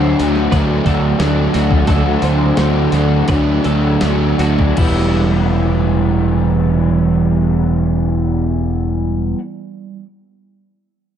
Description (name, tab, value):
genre	rock, shoegaze and dream pop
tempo	78-91 BPM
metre	4/4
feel	straight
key	E minor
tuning	A4 = 440 Hz
part	twelve-string electric guitar	arpeggios	0.0-5.7 s	E4 to C5	-26 LUFS	right 2 dB	wide subtle chorus, analog delay
part	overdriven semi-hollow guitar	riff	0.0-9.4 s	D3 to E4	-18 LUFS	right 8 dB	reverse reverb
part	raw garage guitar	riff	0.0-9.4 s	D3 to F#4	-20 LUFS	left 11 dB	overdrive, analog chorus
part	growling picked electric bass	bass	0.0-9.3 s	E1 to D2	-17 LUFS	equal	overdrive
part	clean 12-bit digital drum machine	drums	0.2-5.0 s	crash cymbal, hi-hat, kick drum, snare drum	-19 LUFS	left 1 dB	none
room	light reverb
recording	dark, warm production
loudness	-13 LUFS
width	side -9 dB against mid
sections	0.0-4.8 A section; 4.8-7.9 B section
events	slowing down 0.0-4.8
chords	0.0 D; 4.8 Em